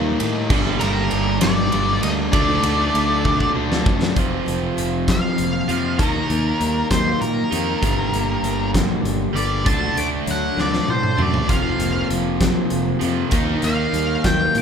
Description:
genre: quiet-loud alternative rock.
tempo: 65 BPM (dotted quarters).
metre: 6/8.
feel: straight.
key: G minor.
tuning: A4 = 438 Hz.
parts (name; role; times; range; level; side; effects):
fuzz guitar; riff; 0.0-4.1 s; G2 to Eb4; -26 LUFS; equal; distortion.
overdriven electric guitar; riff; 0.0-14.6 s; F2 to Eb4; -26 LUFS; left 10 dB; none.
overdriven semi-hollow guitar; riff; 0.0-14.6 s; F2 to Eb4; -25 LUFS; right 8 dB; none.
overdriven fingered electric bass; bass; 0.0-14.6 s; F1 to Bb2; -25 LUFS; right 1 dB; none.
big rock drum kit; drums; 0.2-14.6 s; crash cymbal, hi-hat, kick drum, ride cymbal, snare drum, toms; -22 LUFS; equal; none.
octave-fuzz lead guitar; melody; 0.8-14.6 s; Bb4 to D6; -23 LUFS; left 1 dB; distortion.
fingerpicked steel-string acoustic guitar; arpeggios; 4.2-14.6 s; F2 to A4; -29 LUFS; left 5 dB; none.
room: light reverb.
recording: band playing live in one room.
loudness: -17 LUFS.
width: side -7 dB against mid.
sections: 0.0-4.2 A section; 4.2-14.6 B section.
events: drum fill 3.2-4.2, 10.6-11.5; lead electric guitar solo 4.2-14.6.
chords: 0.0 Eb; 0.5 Gm; 2.3 D; 4.2 Fsus4; 6.0 Eb; 7.8 Gmadd9; 9.7 D; 11.5 Fsus4; 13.3 Eb.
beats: | 0.51 1.42 | 2.34 3.25 | 4.16 5.08 | 6.00 6.91 | 7.83 8.74 | 9.66 10.58 | 11.50 12.41 | 13.33 14.25.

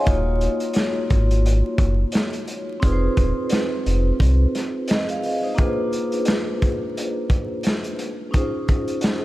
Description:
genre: hip hop, boom-bap hip-hop.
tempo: 87 BPM.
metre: 4/4.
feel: swing 58% on 16ths.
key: Eb dorian.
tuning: A4 = 440 Hz.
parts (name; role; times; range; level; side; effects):
vibraphone with soft mallets; accompaniment; 0.0-9.2 s; Bb3 to C6; -24 LUFS; equal; cassette tape.
sub bass with octave; bass; 0.1-4.5 s; Eb1 to C2; -18 LUFS; equal; none.
crunchy breakbeat drum kit; drums; 0.1-9.2 s; hi-hat, kick drum, snare drum; -22 LUFS; equal; none.
room: light reverb, small room ambience.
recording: vinyl crackle.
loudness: -19 LUFS.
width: side -17 dB against mid.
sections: 0.0-9.2 A section.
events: none.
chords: 0.1 Ebm9; 2.8 Fm7; 5.6 Bb9; 8.3 Dbmaj7.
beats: | 0.07 0.76 1.45 2.14 | 2.83 3.52 4.21 4.89 | 5.58 6.27 6.96 7.65 | 8.34 9.03.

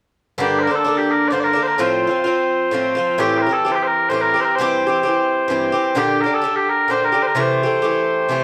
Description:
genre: celtic folk.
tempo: 172 BPM.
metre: 4/4.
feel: swing 64% on 8ths.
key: G dorian.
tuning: A4 = 440 Hz.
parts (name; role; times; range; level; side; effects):
mellow small bagpipes; melody; 0.4-8.4 s; G4 to D5; -20 LUFS; equal; none.
Irish bouzouki; accompaniment; 0.4-8.4 s; G2 to G4; -22 LUFS; equal; none.
room: wet studio reverb, RT60 0.8 s.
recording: band playing live in one room.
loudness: -18 LUFS.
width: mono.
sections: 0.4-8.4 A section.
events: none.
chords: 0.4 Gm; 1.8 F/A; 3.2 Am7; 4.6 C; 6.0 Gm; 7.4 Am7.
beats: | 0.40 0.75 1.10 1.45 | 1.80 2.14 2.49 2.84 | 3.19 3.54 3.88 4.23 | 4.58 4.93 5.27 5.62 | 5.97 6.32 6.66 7.01 | 7.36 7.71 8.05 8.40.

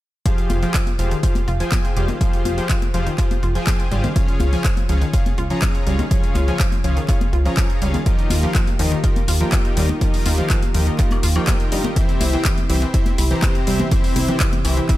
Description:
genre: progressive house.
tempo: 123 BPM.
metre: 4/4.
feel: straight.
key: F minor.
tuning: A4 = 438 Hz.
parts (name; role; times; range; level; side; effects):
analog pluck; arpeggios; 0.3-15.0 s; Eb3 to F4; -26 LUFS; equal; chorus, sidechain pumping, dub echo.
soft supersaw; stabs; 0.3-15.0 s; C3 to Bb5; -26 LUFS; left 2 dB; sidechain pumping, dub echo.
electronic kick drum; drums; 0.3-15.0 s; none; -19 LUFS; equal; studio ambience.
house drum kit; drums; 0.3-15.0 s; handclaps, hi-hat; -27 LUFS; left 1 dB; studio ambience.
plucky analog bass; bass; 0.5-14.8 s; F1 to G2; -20 LUFS; equal; sidechain pumping.
congas and woodblock; percussion; 0.5-14.7 s; none; -30 LUFS; left 5 dB; sidechain pumping on perc.
warm analog pad; sustained chords; 8.1-15.0 s; C3 to G4; -28 LUFS; right 1 dB; chorus, vintage 12-bit sampler grit, sidechain pumping.
room: digital ambience.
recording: none.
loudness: -16 LUFS.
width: side -15 dB against mid.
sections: 0.3-15.0 A section.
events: none.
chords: 0.3 Fmadd9; 4.2 Db; 8.1 Ebadd9; 12.0 C.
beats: | 0.26 0.74 1.23 1.72 | 2.21 2.70 3.18 3.67 | 4.16 4.65 5.13 5.62 | 6.11 6.60 7.09 7.57 | 8.06 8.55 9.04 9.53 | 10.01 10.50 10.99 11.48 | 11.96 12.45 12.94 13.43 | 13.92 14.40 14.89.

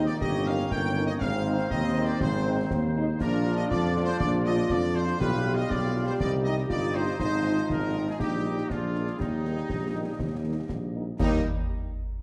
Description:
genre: military-style march for wind band.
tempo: 120 BPM.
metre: 2/4.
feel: straight.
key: Eb major.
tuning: A4 = 441 Hz.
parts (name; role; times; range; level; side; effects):
clear trumpet section; melody; 0.0-11.4 s; Eb4 to G5; -36 LUFS; equal; none.
clear woodwind section; second line; 0.0-11.4 s; Eb4 to F5; -40 LUFS; equal; none.
warm euphonium; second line; 0.0-10.9 s; Bb3 to G4; -34 LUFS; equal; none.
dark French horn section; accompaniment; 0.0-11.4 s; F3 to F4; -39 LUFS; equal; none.
dark trombone section; sustained chords; 0.0-11.4 s; Eb3 to F4; -38 LUFS; equal; none.
mellow tuba; bass; 0.0-11.4 s; G1 to F2; -31 LUFS; equal; none.
concert snare drum, concert bass drum and clash cymbals; drums; 0.2-11.5 s; none; -37 LUFS; equal; none.
room: wet scoring stage reverb, RT60 1.5 s.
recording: dark, warm production.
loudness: -27 LUFS.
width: mono.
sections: 0.0-11.2 A section.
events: none.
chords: 0.2 Eb7/G; 1.2 Ab; 3.2 Bb; 5.2 G7/B; 6.2 Cm; 7.2 Fm7/Ab; 8.2 Eb/Bb; 8.7 Bb7; 9.2 Eb.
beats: | 0.22 0.72 | 1.22 1.72 | 2.22 2.71 | 3.21 3.71 | 4.21 4.71 | 5.21 5.71 | 6.21 6.71 | 7.21 7.71 | 8.20 8.70 | 9.20 9.70 | 10.20 10.70 | 11.20.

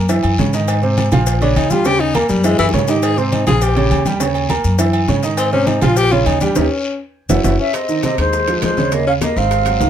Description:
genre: Afro-Cuban jazz.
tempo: 204 BPM.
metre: 4/4.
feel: straight.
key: Ab major.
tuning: A4 = 441 Hz.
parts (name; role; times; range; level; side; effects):
warm upright piano; accompaniment; 0.0-9.9 s; C3 to Bb5; -18 LUFS; right 5 dB; none.
upright bass; bass; 0.0-9.9 s; Gb1 to Ab2; -18 LUFS; left 1 dB; none.
agogo bells and timbales; percussion; 0.1-9.9 s; none; -24 LUFS; right 2 dB; none.
congas; percussion; 0.1-9.9 s; none; -23 LUFS; left 2 dB; none.
cowbell and bongos; percussion; 0.1-9.9 s; none; -28 LUFS; left 7 dB; none.
guiro; percussion; 0.1-9.9 s; none; -30 LUFS; left 4 dB; none.
maracas; percussion; 0.1-9.9 s; none; -29 LUFS; left 6 dB; none.
breathy tenor saxophone; second line; 1.4-9.9 s; Fb3 to Ab4; -19 LUFS; left 4 dB; none.
mellow concert flute; melody; 7.6-9.9 s; C5 to F5; -18 LUFS; right 2 dB; none.
room: light reverb.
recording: close, detailed microphones.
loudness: -13 LUFS.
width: side -9 dB against mid.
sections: 0.0-7.7 A section; 7.7-9.9 B section.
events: tenor saxophone solo 0.0-7.7; drum fill 2.6-3.0, 7.3-7.7; band accent 6.6-7.7.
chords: 0.1 Gb5; 0.7 Abadd9; 1.3 Bbm; 1.9 Eb5; 2.4 Gb5; 3.0 Abadd9; 3.6 Bbm; 4.2 Eb5; 4.8 Gb5; 5.4 Abadd9; 6.0 Bbm; 6.6 Eb7; 7.1 Gb5; 7.7 Ab6; 8.9 Eb5.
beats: 0.09 0.39 | 0.68 0.97 1.27 1.56 | 1.86 2.15 2.44 2.74 | 3.03 3.32 3.62 3.91 | 4.20 4.50 4.79 5.08 | 5.38 5.67 5.97 6.26 | 6.56 6.85 7.14 7.44 | 7.74 8.03 8.33 8.62 | 8.92 9.21 9.51 9.80.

